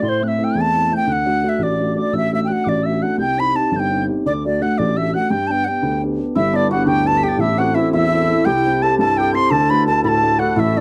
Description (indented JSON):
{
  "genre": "celtic folk, Celtic jig",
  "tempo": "114 BPM (dotted quarters)",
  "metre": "6/8",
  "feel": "straight",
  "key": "unclear",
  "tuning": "A4 = 440 Hz",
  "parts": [
    { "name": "bright wooden flute", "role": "melody", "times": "0.0-10.8 s", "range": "C5 to C6", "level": "-22 LUFS", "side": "equal", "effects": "none" },
    { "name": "hammered dulcimer", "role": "second line", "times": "0.0-0.4, 6.4-10.8 s", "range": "D4 to C5", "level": "-25 LUFS", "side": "equal", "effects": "none" },
    { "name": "hollow wooden whistle", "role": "second line", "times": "0.0-10.8 s", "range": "C6 to C7", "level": "-29 LUFS", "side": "equal", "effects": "none" },
    { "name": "dark upright piano", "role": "accompaniment", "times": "0.0-10.8 s", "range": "G1 to A4", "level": "-21 LUFS", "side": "equal", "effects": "none" }
  ],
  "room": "light reverb",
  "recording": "dry, close 1970s-style studio recording",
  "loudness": "-18 LUFS",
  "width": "mono",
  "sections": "0.0-6.4 A section; 6.4-10.8 B section",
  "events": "none",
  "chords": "0.0 Am; 1.1 D; 3.2 Cm; 4.2 D; 5.3 G; 7.4 Am; 8.5 C; 9.5 D"
}